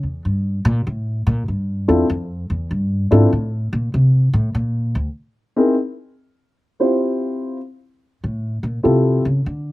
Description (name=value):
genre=jazz piano trio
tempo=98 BPM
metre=4/4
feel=swing 69% on 8ths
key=D minor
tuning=A4 = 440 Hz
part: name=upright bass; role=bass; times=0.0-9.7 s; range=D2 to D3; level=-18 LUFS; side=equal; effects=none
part: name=dark upright piano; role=melody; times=1.9-9.2 s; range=C4 to C5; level=-16 LUFS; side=left 1 dB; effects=none
room=little or no reverb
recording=recorded outdoors, with no room sound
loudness=-17 LUFS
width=side -18 dB against mid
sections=0.0-7.0 A section; 7.0-9.7 A section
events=upright bass solo 0.0-9.7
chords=0.0 A7(no3); 2.1 Dm7 (rootless); 4.5 N.C.; 7.0 Fmaj9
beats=0.22 0.84 1.45 | 2.07 2.68 3.30 3.91 | 4.53 5.14 5.75 6.37 | 6.98 7.60 8.21 8.83 | 9.44